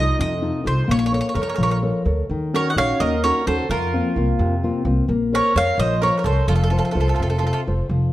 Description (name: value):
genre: italian folk, Italian serenade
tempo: 86 BPM (dotted quarters)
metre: 6/8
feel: straight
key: unclear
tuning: A4 = 440 Hz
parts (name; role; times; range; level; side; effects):
- bowl-back mandolin; melody; 0.0-7.6 s; A4 to Gb5; -23 LUFS; right 2 dB; none
- nylon-string guitar; accompaniment; 0.0-8.1 s; C3 to Db5; -22 LUFS; left 3 dB; none
- upright bass; bass; 0.0-8.1 s; F1 to F2; -21 LUFS; equal; none
- mandolin; second line; 1.3-7.6 s; F4 to Eb5; -27 LUFS; right 5 dB; none
room: moderate recital hall reverb, RT60 1.7 s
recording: dark, warm production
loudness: -18 LUFS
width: side -15 dB against mid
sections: 0.0-8.1 A section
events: none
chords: 0.0 F7; 0.9 Bbmmaj7; 2.3 Ebm7; 3.7 Fsus4; 5.1 Bbmadd9; 6.5 F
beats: 0.18 | 0.88 1.58 | 2.29 2.99 | 3.69 4.39 | 5.09 5.79 | 6.48 7.19 | 7.90